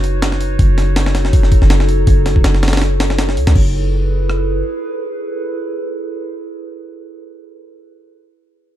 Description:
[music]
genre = drum and bass, jungle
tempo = 162 BPM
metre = 4/4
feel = swing 55% on 16ths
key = F# dorian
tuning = A4 = 440 Hz
[part]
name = warbly tape-like pad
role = sustained chords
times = 0.0-7.3 s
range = D#4 to C#5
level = -22 LUFS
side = equal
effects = chorus, built-in reverb
[part]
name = warm 808-style bass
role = bass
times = 0.0-4.6 s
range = F#1 to C#2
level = -15 LUFS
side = equal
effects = none
[part]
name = jungle sampler-style drum kit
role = drums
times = 0.0-4.4 s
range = crash cymbal, hi-hat, kick drum, rim click, snare drum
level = -14 LUFS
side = equal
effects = small room ambience
[sound]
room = little or no reverb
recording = dark, warm production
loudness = -13 LUFS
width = side -12 dB against mid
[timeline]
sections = 0.0-3.6 A section; 3.6-6.5 B section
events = drop 0.0-3.6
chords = 0.0 Badd9/F#; 3.6 F#m11

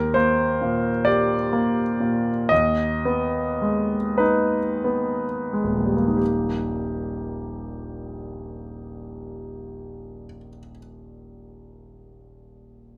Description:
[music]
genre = classical, romantic nocturne for solo piano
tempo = 28-45 BPM (dotted quarters)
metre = 12/8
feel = rubato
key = Eb major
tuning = A4 = 440 Hz
[part]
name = clear concert grand piano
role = solo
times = 0.0-13.0 s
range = Eb1 to Eb5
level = -24 LUFS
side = equal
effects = none
[sound]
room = light reverb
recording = none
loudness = -23 LUFS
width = mono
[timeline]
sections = 0.0-6.2 A section; 6.2-13.0 B section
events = slowing down 0.0-6.2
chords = 0.0 Eb; 2.5 Abm/Eb; 6.2 Eb

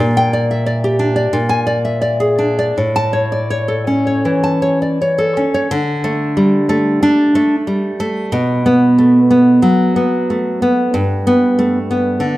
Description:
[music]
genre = romantic piece for solo classical guitar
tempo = 79-96 BPM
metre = 4/4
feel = rubato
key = D major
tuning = A4 = 440 Hz
[part]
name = nylon-string guitar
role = solo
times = 0.0-12.4 s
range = G2 to A5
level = -12 LUFS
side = equal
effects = none
[sound]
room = moderate recital hall reverb, RT60 1.6 s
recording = dark, warm production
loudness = -12 LUFS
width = side -17 dB against mid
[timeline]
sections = 0.0-5.7 A section; 5.7-12.4 B section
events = none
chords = 0.0 Gm/Bb; 1.3 Bb7; 2.7 A; 5.7 D5; 8.3 B5; 10.9 G

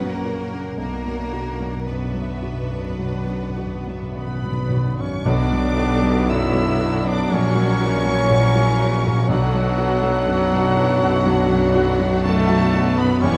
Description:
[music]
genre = classical, romantic movement for piano and orchestra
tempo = 49-62 BPM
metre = 4/4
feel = rubato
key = B minor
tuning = A4 = 445 Hz
[part]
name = rich symphonic violin section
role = melody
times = 0.0-13.4 s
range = D5 to E6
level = -34 LUFS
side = equal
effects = none
[part]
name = warm grand piano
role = melody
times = 0.0-13.4 s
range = A#1 to F#4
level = -26 LUFS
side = equal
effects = none
[part]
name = clear studio violin section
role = second line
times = 0.0-13.4 s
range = B3 to B4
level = -35 LUFS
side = equal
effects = none
[part]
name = rich studio viola section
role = accompaniment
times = 0.0-13.4 s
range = D3 to F#4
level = -31 LUFS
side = equal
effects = none
[part]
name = clear symphonic cello section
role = bass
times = 0.0-13.4 s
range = E2 to B3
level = -32 LUFS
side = equal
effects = none
[part]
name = clear symphonic double bass section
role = bass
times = 0.0-13.4 s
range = E1 to B1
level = -28 LUFS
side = equal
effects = none
[part]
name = timpani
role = percussion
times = 0.0-10.7 s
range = B2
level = -30 LUFS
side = equal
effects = none
[part]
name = hollow large flute ensemble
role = second line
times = 4.2-13.4 s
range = F#4 to E5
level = -33 LUFS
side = equal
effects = none
[part]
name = mellow cor anglais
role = second line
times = 4.2-13.4 s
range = F#3 to E4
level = -31 LUFS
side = equal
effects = none
[part]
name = dark French horn section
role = sustained chords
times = 4.2-13.4 s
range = F#3 to E4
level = -28 LUFS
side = equal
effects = none
[part]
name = mellow clarinet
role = second line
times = 5.3-13.4 s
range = B3 to D4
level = -34 LUFS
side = equal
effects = none
[part]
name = warm bassoon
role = accompaniment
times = 5.3-13.4 s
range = F#3 to G3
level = -30 LUFS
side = equal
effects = none
[part]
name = mellow trombone section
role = sustained chords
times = 5.3-13.4 s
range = F#3 to D4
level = -34 LUFS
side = equal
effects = none
[part]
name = clear tuba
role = bass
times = 5.3-13.4 s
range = E1 to B1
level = -30 LUFS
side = equal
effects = none
[sound]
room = moderate scoring stage reverb, RT60 1.9 s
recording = dark, warm production, vinyl crackle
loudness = -20 LUFS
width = mono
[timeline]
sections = 0.0-5.3 A section; 5.3-13.4 B section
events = timpani fill 0.8-5.3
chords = 0.0 F#; 0.8 Bm; 7.3 F#/A#; 9.3 Bm

